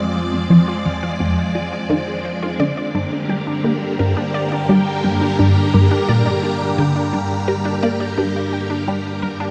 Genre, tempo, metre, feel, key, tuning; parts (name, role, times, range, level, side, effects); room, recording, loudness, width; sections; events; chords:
ambient, sequencer-driven space music; 86 BPM; 4/4; straight; A4 = 440 Hz
phased string machine; sustained chords; 0.0-9.5 s; D3 to D5; -23 LUFS; equal; ensemble chorus, phaser
unison pluck; arpeggios; 0.0-9.5 s; D4 to Ab5; -30 LUFS; equal; delay
analog drone; bass; 0.0-9.5 s; F2 to G2; -31 LUFS; equal; chorus
resonant blip pluck; riff; 0.5-9.5 s; F2 to Bb3; -20 LUFS; equal; phaser, delay
wet huge ambient reverb, RT60 7.6 s; -18 LUFS; mono
0.0-9.5 A section
fade-in on synth arpeggio sound 0.0-9.5; filter sweep on synth arpeggio sound 0.0-9.5; fade-out 6.3-9.5
0.0 Fm; 2.6 Gm